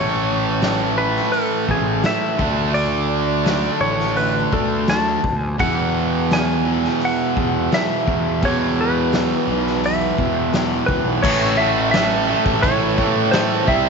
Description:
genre	classic rock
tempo	85 BPM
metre	4/4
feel	straight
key	unclear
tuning	A4 = 440 Hz
part	clean lap steel guitar	melody	0.0-13.9 s	G#4 to A5	-22 LUFS	left 1 dB	none
part	overdriven electric guitar	riff	0.0-13.9 s	E2 to D4	-25 LUFS	left 14 dB	spring reverb
part	overdriven electric guitar	riff	0.0-13.9 s	E2 to D4	-22 LUFS	right 12 dB	none
part	fuzz picked electric bass	bass	0.0-13.9 s	A1 to A2	-24 LUFS	left 1 dB	overdrive
part	raw garage drum kit	drums	0.6-13.8 s	crash cymbal, hi-hat, kick drum, snare drum	-24 LUFS	left 1 dB	none
part	octave-fuzz lead guitar	second line	10.9-13.9 s	B3 to A4	-27 LUFS	right 10 dB	distortion
part	overdriven semi-hollow guitar	riff	11.2-13.9 s	A2 to C4	-25 LUFS	left 1 dB	none
room	light reverb, studio ambience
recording	1960s-style stereo with parts hard left and right, nothing above 7.7 kHz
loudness	-16 LUFS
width	side -5 dB against mid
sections	0.0-11.2 A section; 11.2-13.9 B section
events	none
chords	0.0 A; 2.4 D5; 5.6 E5; 11.2 A

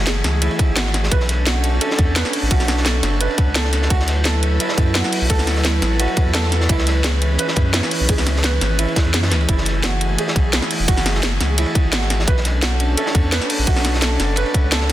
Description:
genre	liquid drum and bass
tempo	172 BPM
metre	4/4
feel	straight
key	F# minor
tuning	A4 = 440 Hz
part	airy breathy pad	sustained chords	0.0-14.9 s	E3 to B4	-25 LUFS	equal	chorus, sidechain pumping
part	felt-muted upright piano	arpeggios	0.0-14.9 s	E4 to B4	-25 LUFS	right 4 dB	digital delay
part	warm sub bass	bass	0.0-14.9 s	E1 to F#2	-20 LUFS	equal	none
part	crunchy breakbeat drum kit	drums	0.1-14.9 s	hi-hat, ride cymbal, snare drum	-25 LUFS	equal	high-pass filter on cymbals, high-pass filter on hats, high-pass filter on snare, high-pass filter on room
part	garage drum kit	drums	0.1-14.9 s	hi-hat, snare drum	-22 LUFS	equal	none
part	electronic kick drum	drums	0.6-14.6 s	none	-17 LUFS	equal	none
room	moderate recital hall reverb, RT60 1.6 s, small room ambience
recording	dense, heavily limited modern master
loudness	-15 LUFS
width	side -14 dB against mid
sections	0.0-14.9 A section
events	none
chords	0.0 F#m9; 1.1 Bm9; 3.9 D69; 6.7 C#m7; 9.5 F#m9; 12.3 Bm9

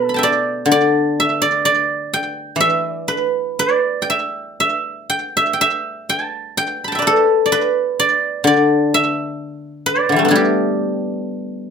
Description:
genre	chinese traditional, Chinese solo plucked strings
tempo	59-65 BPM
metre	2/4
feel	rubato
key	G gong mode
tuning	A4 = 440 Hz
part	guzheng	solo	0.0-11.7 s	B2 to B5	-15 LUFS	equal	slapback echo
room	moderate small room reverb, RT60 0.5 s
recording	close, detailed microphones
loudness	-15 LUFS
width	side -6 dB against mid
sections	0.0-11.7 A section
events	none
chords	none

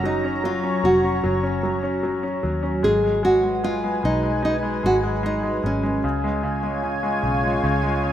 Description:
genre	pop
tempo	75 BPM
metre	4/4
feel	straight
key	G# dorian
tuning	A4 = 441 Hz
part	nylon-string guitar	melody	0.0-8.1 s	C#4 to G#4	-23 LUFS	right 1 dB	none
part	bright grand piano	accompaniment	0.0-8.1 s	C#3 to D#4	-25 LUFS	left 1 dB	none
part	lush unison pad	sustained chords	0.0-8.1 s	F#3 to A#5	-26 LUFS	equal	chorus
part	vintage muted fingered electric bass	bass	0.0-8.1 s	E#1 to D#2	-28 LUFS	equal	none
room	moderate plate reverb, RT60 2.6 s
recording	rough home demo mix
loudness	-19 LUFS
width	side -11 dB against mid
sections	0.0-8.1 A section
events	none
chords	0.0 F#; 2.8 G#m7; 6.0 C#

